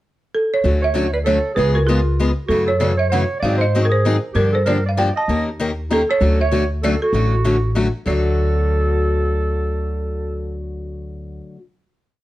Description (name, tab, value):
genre	acoustic string swing (jazz manouche)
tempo	194 BPM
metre	3/4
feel	swing 61% on 8ths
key	D major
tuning	A4 = 439 Hz
part	folk marimba with medium hard mallets	melody	0.3-11.4 s	G#4 to A5	-20 LUFS	right 2 dB	none
part	picked steel-string acoustic guitar	accompaniment	0.6-11.6 s	C#3 to Bb4	-22 LUFS	left 3 dB	none
part	upright bass	bass	0.6-11.4 s	A1 to G#2	-20 LUFS	equal	none
part	growling clarinet	second line	0.8-10.7 s	Eb4 to Eb5	-24 LUFS	right 3 dB	none
room	light reverb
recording	worn, warbling old tape, cassette tape, warbly pitch drift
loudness	-16 LUFS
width	side -15 dB against mid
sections	0.0-0.6 pickup bar; 0.6-8.1 A section; 8.1-9.9 final chord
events	none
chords	0.0 N.C.; 0.6 Dmaj7; 1.6 C#7; 2.5 F#m7; 3.4 G#7; 4.3 Gm7; 5.3 Eb7; 6.2 Dmaj7; 8.1 D